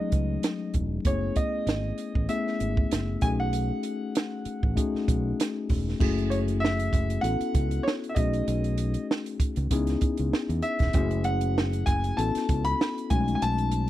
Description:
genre	lush 1970s-style soul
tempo	97 BPM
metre	4/4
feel	swing 54% on 16ths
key	F# dorian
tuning	A4 = 435 Hz
part	clear concert grand piano	melody	0.0-13.9 s	C#5 to B5	-32 LUFS	right 1 dB	none
part	mellow tine electric piano	accompaniment	0.0-13.9 s	F#3 to A4	-30 LUFS	left 5 dB	none
part	fingered electric bass	bass	0.1-13.9 s	E1 to E2	-28 LUFS	right 1 dB	none
part	compact cocktail drum kit	drums	0.1-13.9 s	crash cymbal, hi-hat, kick drum, snare drum	-27 LUFS	right 1 dB	none
room	studio reverb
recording	dry, close 1970s-style studio recording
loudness	-24 LUFS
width	side -14 dB against mid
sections	0.0-6.0 A section; 6.0-13.9 B section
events	none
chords	0.0 B13 (rootless); 1.1 F#m11; 3.2 B13; 6.0 F#m9; 7.2 A69; 8.2 B13; 9.7 C#m9; 10.9 F#m9; 12.2 A69; 13.1 B13

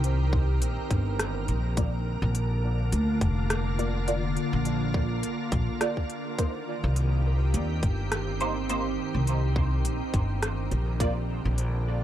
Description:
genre	ambient dub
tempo	104 BPM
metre	4/4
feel	swing 56% on 16ths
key	C minor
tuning	A4 = 440 Hz
part	soft additive organ-like pad	sustained chords	0.0-12.0 s	D3 to Bb4	-32 LUFS	equal	ensemble chorus, built-in reverb
part	upright bass	bass	0.0-12.0 s	F1 to Eb2	-26 LUFS	equal	none
part	organic electronic drum kit	drums	0.0-11.7 s	hi-hat, rim click	-33 LUFS	equal	none
part	electronic kick drum	drums	0.3-11.1 s	none	-27 LUFS	equal	none
part	filtered dub chord stab	stabs	1.8-11.1 s	Bb3 to D5	-35 LUFS	right 1 dB	phaser, ensemble chorus, dub echo
room	digital ambience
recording	none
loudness	-25 LUFS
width	side -12 dB against mid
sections	0.0-12.0 A section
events	none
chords	0.0 Cm7; 1.8 Bb; 6.4 Cm7; 11.0 Bb

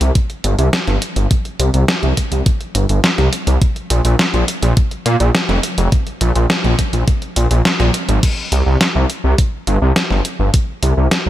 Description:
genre	synthwave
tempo	104 BPM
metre	4/4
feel	straight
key	unclear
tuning	A4 = 440 Hz
part	wide detuned saw bass	bass	0.0-11.3 s	F1 to Bb2	-13 LUFS	equal	chorus, sidechain pumping
part	detuned 8-bit digital drum machine	drums	0.0-11.2 s	crash cymbal, hi-hat, snare drum	-18 LUFS	equal	studio reverb
part	electronic kick drum	drums	0.2-10.7 s	none	-15 LUFS	equal	studio reverb
room	light reverb, digital ambience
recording	none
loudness	-13 LUFS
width	side -13 dB against mid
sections	0.0-8.2 A section; 8.2-11.3 B section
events	none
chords	none

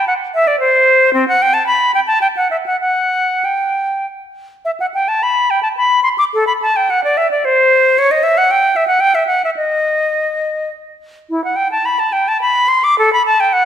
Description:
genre	classical, baroque-style fantasia for unaccompanied flute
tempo	97-116 BPM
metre	3/4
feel	rubato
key	unclear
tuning	A4 = 439 Hz
part	bright silver concert flute	solo	0.0-13.7 s	C4 to D6	-12 LUFS	equal	none
room	wet recital hall reverb, RT60 1.6 s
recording	minimal, uncompressed stereo recording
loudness	-12 LUFS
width	side -9 dB against mid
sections	0.0-4.7 A section; 4.7-13.7 A section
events	none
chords	none

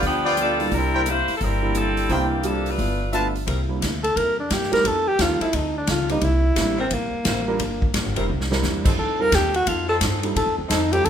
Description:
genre	jazz, big band swing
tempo	174 BPM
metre	4/4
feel	swing 64% on 8ths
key	C mixolydian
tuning	A4 = 440 Hz
part	bright saxophone section	melody	0.0-3.1 s	E3 to C5	-24 LUFS	left 1 dB	none
part	vintage hollow-body jazz guitar	accompaniment	0.0-11.1 s	G2 to A4	-32 LUFS	left 5 dB	none
part	upright bass	bass	0.0-11.1 s	F1 to A2	-26 LUFS	equal	none
part	swinging big-band drum kit	drums	0.0-11.1 s	crash cymbal, hi-hat, kick drum, ride cymbal, snare drum	-26 LUFS	equal	none
part	warm trumpet section	stabs	0.2-3.3 s	E4 to A5	-25 LUFS	equal	none
part	warm grand piano	accompaniment	0.6-11.1 s	F3 to Bb4	-28 LUFS	right 4 dB	none
part	clear saxophone section	sustained chords	3.5-10.8 s	F3 to C5	-32 LUFS	left 1 dB	none
part	breathy alto saxophone	melody	4.0-11.1 s	Bb3 to Bb4	-22 LUFS	equal	none
room	light reverb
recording	minimal, uncompressed stereo recording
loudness	-19 LUFS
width	side -8 dB against mid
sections	0.0-3.5 A section; 3.5-11.1 B section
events	alto saxophone solo 3.5-11.1; drum fill 8.3-8.6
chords	0.0 G7; 0.7 C7; 2.8 G13; 3.5 C7; 4.8 F7; 6.2 C7; 7.6 Gm7; 8.3 C7; 9.0 F7

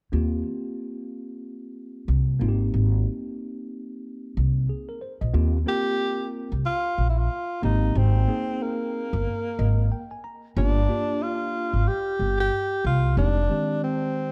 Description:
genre	hip hop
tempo	92 BPM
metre	4/4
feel	swing 60% on 16ths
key	Eb major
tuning	A4 = 440 Hz
part	mellow tine electric piano	accompaniment	0.1-14.3 s	Eb3 to Bb5	-33 LUFS	equal	none
part	upright bass	bass	0.1-13.5 s	F1 to Eb2	-24 LUFS	equal	none
part	mellow tenor saxophone	melody	5.7-14.3 s	Bb3 to G4	-29 LUFS	equal	slapback echo
room	light reverb, small room reverb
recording	dark, warm production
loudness	-25 LUFS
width	mono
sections	0.1-5.3 A section; 5.3-14.3 B section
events	tine electric piano fill 9.3-10.6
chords	0.1 Eb69; 2.4 Abmaj9; 5.3 Eb69; 7.6 Abmaj9; 10.6 Gm7; 13.2 Fm9

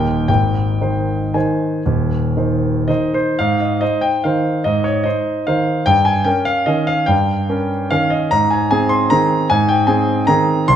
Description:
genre	classical, piano waltz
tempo	109-159 BPM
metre	3/4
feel	rubato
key	Ab major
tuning	A4 = 441 Hz
part	clear concert grand piano	solo	0.0-10.8 s	Eb1 to C6	-14 LUFS	equal	none
room	moderate recital hall reverb, RT60 1.5 s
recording	none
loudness	-14 LUFS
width	side -9 dB against mid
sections	0.0-3.4 A section; 3.4-10.8 B section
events	none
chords	0.3 Ab; 5.9 Eb7/G; 8.3 Ab

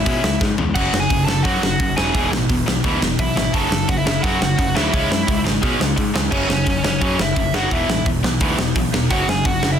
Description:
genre	punk rock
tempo	172 BPM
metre	4/4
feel	straight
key	F# minor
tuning	A4 = 440 Hz
part	biting overdriven guitar	melody	0.0-9.8 s	C#4 to A5	-22 LUFS	equal	none
part	tight distorted guitar	riff	0.0-9.8 s	E2 to C#4	-22 LUFS	left 7 dB	distortion
part	modern bright picked electric bass	bass	0.0-9.8 s	E1 to B2	-25 LUFS	right 1 dB	none
part	big rock drum kit	drums	0.1-9.7 s	crash cymbal, hi-hat, kick drum, snare drum, toms	-21 LUFS	right 1 dB	none
part	distorted electric guitar	riff	0.8-9.8 s	E2 to C#4	-25 LUFS	right 14 dB	overdrive
room	little or no reverb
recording	dense, heavily limited modern master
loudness	-16 LUFS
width	side -8 dB against mid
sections	0.0-9.8 A section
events	drum fill 0.4-0.8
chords	0.0 C#m; 0.8 F#m; 2.1 E; 3.5 F#m; 4.9 C#m; 6.3 F#5; 7.7 E5; 9.1 F#5

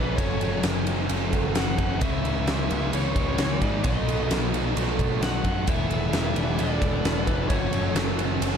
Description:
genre	rock, shoegaze and dream pop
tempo	131 BPM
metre	4/4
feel	straight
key	F# minor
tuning	A4 = 440 Hz
part	bluesy overdriven lead guitar	melody	0.0-7.9 s	B4 to F#5	-33 LUFS	left 3 dB	distortion, tape echo
part	picked twelve-string acoustic guitar	arpeggios	0.0-8.6 s	F#4 to C#5	-36 LUFS	right 12 dB	none
part	crunchy overdriven guitar	riff	0.0-8.6 s	E2 to F#4	-32 LUFS	left 12 dB	lush chorus
part	crunchy overdriven guitar	riff	0.0-8.6 s	F#2 to F#4	-32 LUFS	right 12 dB	reverse reverb
part	distorted electric guitar	riff	0.0-8.6 s	F#2 to E4	-32 LUFS	equal	overdrive
part	growling picked electric bass	bass	0.0-8.6 s	E1 to G#2	-28 LUFS	equal	overdrive
part	huge arena drum kit	drums	0.2-8.5 s	kick drum, ride cymbal, snare drum	-27 LUFS	equal	none
part	soft string machine	sustained chords	5.6-8.6 s	C#5 to E6	-38 LUFS	equal	ensemble chorus
room	studio reverb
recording	dark, warm production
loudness	-22 LUFS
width	side -7 dB against mid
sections	0.0-8.6 A section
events	none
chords	0.2 F#m7; 2.0 C#m7; 3.8 B7; 5.7 E9sus4; 7.5 F#m7

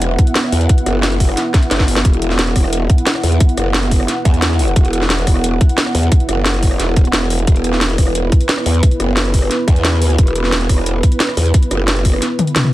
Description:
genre	dark technical drum and bass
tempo	177 BPM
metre	4/4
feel	straight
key	unclear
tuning	A4 = 440 Hz
part	dark analog pad	sustained chords	0.0-12.7 s	B3 to F#5	-20 LUFS	right 1 dB	chorus, sidechain pumping
part	growl bass	bass	0.0-12.2 s	E1 to E2	-16 LUFS	equal	chorus, tube saturation, sidechain pumping
part	drum and bass drum kit	drums	0.0-12.7 s	hi-hat, rim click, snare drum, toms	-18 LUFS	equal	none
part	electronic kick drum	drums	0.2-12.1 s	none	-12 LUFS	equal	none
room	digital ambience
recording	dense, heavily limited modern master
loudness	-12 LUFS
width	side -16 dB against mid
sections	0.0-12.7 A section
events	drum fill 1.5-2.0, 12.4-12.7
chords	0.0 E5

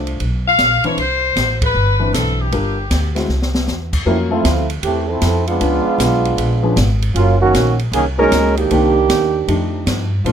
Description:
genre	jazz, big band swing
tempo	155 BPM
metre	4/4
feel	swing 65% on 8ths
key	C major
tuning	A4 = 440 Hz
part	bright saxophone section	melody	0.0-3.2 s	G4 to F5	-16 LUFS	left 3 dB	none
part	dark upright piano	accompaniment	0.0-10.3 s	Eb3 to E5	-20 LUFS	left 3 dB	none
part	upright bass	bass	0.0-10.3 s	Gb1 to Bb2	-18 LUFS	equal	none
part	open jazz drum kit	drums	0.1-10.3 s	crash cymbal, hi-hat, kick drum, ride cymbal, snare drum	-23 LUFS	equal	none
part	warm trombone section	second line	4.1-10.3 s	Eb3 to Bb4	-16 LUFS	right 4 dB	none
room	little or no reverb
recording	close, detailed microphones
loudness	-14 LUFS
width	side -8 dB against mid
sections	0.0-4.1 A section; 4.1-10.3 B section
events	band accent 1.6; drum fill 3.3-3.7; trombone section solo 4.1-10.3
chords	0.2 Db13b9 (rootless); 1.0 Cmaj9; 2.5 Gm7; 3.3 C; 4.1 Fmaj7; 5.6 Db7b9; 7.2 Gb69; 8.7 Cm9; 9.5 F13

